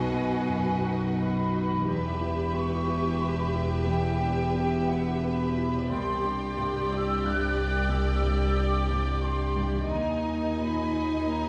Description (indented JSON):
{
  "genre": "cinematic, emotional film score for orchestra",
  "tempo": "89 BPM",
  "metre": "3/4",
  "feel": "rubato",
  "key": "unclear",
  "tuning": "A4 = 444 Hz",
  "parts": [
    { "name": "rich symphonic violin section", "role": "melody", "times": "0.0-11.5 s", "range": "D#5 to G#5", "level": "-44 LUFS", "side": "equal", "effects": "none" },
    { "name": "mellow flute section", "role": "second line", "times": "0.0-11.5 s", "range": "F#5 to F#6", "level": "-35 LUFS", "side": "equal", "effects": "none" },
    { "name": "warm symphonic violin section", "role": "second line", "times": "0.0-11.5 s", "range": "B4 to D#5", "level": "-41 LUFS", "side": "equal", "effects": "none" },
    { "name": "clear grand piano", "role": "accompaniment", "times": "0.0-11.5 s", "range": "B1 to E4", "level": "-32 LUFS", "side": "equal", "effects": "none" },
    { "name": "clear symphonic viola section", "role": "accompaniment", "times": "0.0-11.5 s", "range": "D#4 to G4", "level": "-36 LUFS", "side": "equal", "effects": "none" },
    { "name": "concert harp", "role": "arpeggios", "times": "0.0-11.5 s", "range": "C3 to G#4", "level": "-43 LUFS", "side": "equal", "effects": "none" },
    { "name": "clear symphonic cello section", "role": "bass", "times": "0.0-11.5 s", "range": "C2 to B2", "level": "-37 LUFS", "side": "equal", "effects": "none" },
    { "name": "rich symphonic double bass section", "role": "bass", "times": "0.0-11.5 s", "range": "E1 to D#2", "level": "-34 LUFS", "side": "equal", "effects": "none" }
  ],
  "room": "wet scoring stage reverb, RT60 1.6 s",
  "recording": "heard from further back in the room",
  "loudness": "-27 LUFS",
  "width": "mono",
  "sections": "0.0-11.5 A section",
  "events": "none",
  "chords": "0.0 B; 1.9 Em; 5.9 Csus2; 9.9 D#sus4"
}